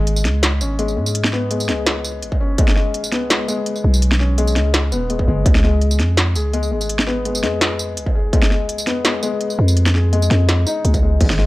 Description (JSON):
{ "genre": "half-time drum and bass", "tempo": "167 BPM", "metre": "4/4", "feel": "half-time", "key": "unclear", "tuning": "A4 = 443 Hz", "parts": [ { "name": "felt-muted upright piano", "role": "arpeggios", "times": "0.0-11.5 s", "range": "G#3 to G#4", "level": "-22 LUFS", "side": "left 3 dB", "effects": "tape echo" }, { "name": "growling 808-style bass", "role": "bass", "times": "0.0-11.5 s", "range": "D#1 to G#2", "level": "-17 LUFS", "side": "equal", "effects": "tube saturation" }, { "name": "industrial drum kit", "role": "drums", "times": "0.1-11.5 s", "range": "crash cymbal, hi-hat, snare drum, tambourine", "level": "-20 LUFS", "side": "equal", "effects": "none" }, { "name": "electronic kick drum", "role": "drums", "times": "2.3-2.7, 5.2-5.5, 8.1-8.4, 10.9-11.3 s", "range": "none", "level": "-16 LUFS", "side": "equal", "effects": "distortion" } ], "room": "little or no reverb", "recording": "dry, gritty hardware recording", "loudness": "-15 LUFS", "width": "side -18 dB against mid", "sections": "0.0-11.2 A section", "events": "drop 0.0-11.2", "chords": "0.0 G#m; 5.5 C#", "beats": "0.07 0.43 0.79 | 1.15 1.51 1.87 2.23 | 2.58 2.94 3.30 3.66 | 4.02 4.38 4.74 5.10 | 5.46 5.82 6.18 6.54 | 6.90 7.25 7.62 7.97 | 8.33 8.69 9.05 9.41 | 9.77 10.13 10.49 10.85 | 11.21" }